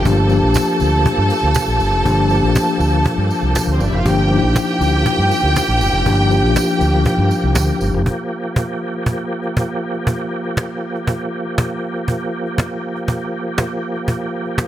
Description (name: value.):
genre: disco.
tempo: 120 BPM.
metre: 4/4.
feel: straight.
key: unclear.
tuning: A4 = 439 Hz.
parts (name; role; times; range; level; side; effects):
warm studio violin section; second line; 0.0-7.8 s; C4 to A5; -20 LUFS; right 1 dB; none.
mellow tine electric piano; accompaniment; 0.0-8.1 s; F3 to G4; -18 LUFS; left 3 dB; medium stereo tremolo.
overdriven tonewheel organ; sustained chords; 0.0-14.7 s; F3 to G4; -23 LUFS; right 1 dB; chorus vibrato, fast rotary speaker.
overdriven fingered electric bass; bass; 0.0-8.0 s; F1 to G2; -17 LUFS; equal; none.
cajon; drums; 0.1-14.7 s; none; -19 LUFS; equal; none.
tambourine; percussion; 0.1-7.9 s; none; -32 LUFS; right 6 dB; none.
room: light reverb, studio reverb.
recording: none.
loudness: -15 LUFS.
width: side -12 dB against mid.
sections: 0.0-8.1 A section; 8.1-14.7 B section.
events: none.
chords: 0.0 Gm7.